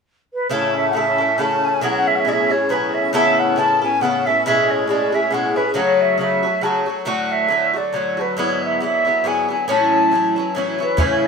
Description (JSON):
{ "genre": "celtic folk, Celtic waltz", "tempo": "138 BPM", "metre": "3/4", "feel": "swing 57% on 8ths", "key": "A major", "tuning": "A4 = 440 Hz", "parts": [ { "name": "wooden flute", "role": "melody", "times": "0.3-11.3 s", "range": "B4 to A5", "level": "-18 LUFS", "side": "right 1 dB", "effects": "none" }, { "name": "Irish bouzouki", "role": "accompaniment", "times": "0.5-11.3 s", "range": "G#2 to A4", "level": "-20 LUFS", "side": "left 2 dB", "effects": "none" }, { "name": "musette accordion", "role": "drone", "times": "0.5-11.3 s", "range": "A2 to C#4", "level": "-28 LUFS", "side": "equal", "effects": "none" }, { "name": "bodhran", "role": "percussion", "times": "11.0-11.1 s", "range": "none", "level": "-18 LUFS", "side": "equal", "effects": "none" } ], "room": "light reverb", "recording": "minimal, uncompressed stereo recording", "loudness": "-16 LUFS", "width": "side -5 dB against mid", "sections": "0.5-11.0 A section", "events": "none", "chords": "0.0 N.C.; 0.5 A; 1.8 Eadd9; 3.1 Aadd9; 4.4 E; 5.8 F#m; 7.1 D; 8.4 E7; 9.7 A" }